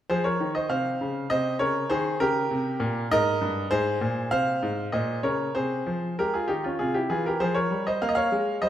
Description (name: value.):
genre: classical, baroque-style suite movement for grand piano.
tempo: 99 BPM.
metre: 3/4.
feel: rubato.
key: F minor.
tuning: A4 = 440 Hz.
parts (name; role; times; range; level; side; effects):
bright grand piano; solo; 0.1-8.7 s; G2 to F5; -23 LUFS; equal; none.
room: moderate recital hall reverb, RT60 1.6 s.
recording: none.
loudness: -24 LUFS.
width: side -11 dB against mid.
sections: 0.1-8.7 A section.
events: none.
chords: 0.1 F5; 1.9 Eb; 3.7 Ab; 4.9 Bbm; 5.6 Fm/C; 6.8 C; 7.4 Fm.